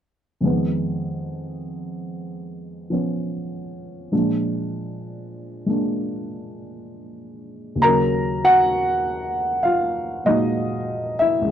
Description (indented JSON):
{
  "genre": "solo jazz",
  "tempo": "65 BPM",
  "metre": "4/4",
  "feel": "swing 68% on 8ths",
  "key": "Eb minor",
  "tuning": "A4 = 440 Hz",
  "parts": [
    { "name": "dark upright piano", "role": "solo", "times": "0.4-11.5 s", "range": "Db2 to Bb5", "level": "-20 LUFS", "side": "equal", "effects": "none" }
  ],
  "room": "light reverb",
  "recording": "none",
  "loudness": "-19 LUFS",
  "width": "side -9 dB against mid",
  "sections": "0.4-7.8 A section; 7.8-11.5 B section",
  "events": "none",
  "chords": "0.4 Fm7b5; 4.1 Bb7; 7.8 Ebm9"
}